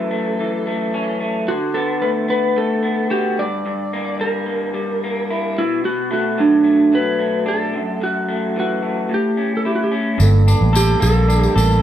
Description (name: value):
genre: indie pop, bedroom pop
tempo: 110 BPM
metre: 4/4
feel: straight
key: unclear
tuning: A4 = 444 Hz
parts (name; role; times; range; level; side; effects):
- electric slide guitar; melody; 0.0-11.5 s; D4 to D5; -20 LUFS; right 1 dB; none
- electric guitar through a small old amp; accompaniment; 0.0-11.8 s; F#2 to A4; -20 LUFS; left 1 dB; vibrato effect
- mellow tine electric piano; accompaniment; 10.2-11.8 s; G3 to Bb4; -23 LUFS; right 4 dB; medium stereo tremolo
- vintage muted fingered electric bass; bass; 10.2-11.8 s; G1 to Bb1; -13 LUFS; equal; none
- tambourine; percussion; 10.2-11.8 s; none; -28 LUFS; left 4 dB; none
room: moderate stone room reverb, RT60 1.3 s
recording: band playing live in one room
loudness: -16 LUFS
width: side -11 dB against mid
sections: 0.0-10.2 A section; 10.2-11.8 B section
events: none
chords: 0.0 F#m7; 1.5 D6; 3.4 Gm; 5.6 Bm7; 7.7 F#m7; 9.1 A7; 10.2 Gmadd9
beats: 0.38 0.93 | 1.47 2.02 2.56 3.11 | 3.66 4.20 4.75 5.29 | 5.84 6.38 6.93 7.47 | 8.02 8.57 9.11 9.66 | 10.20 10.75 11.29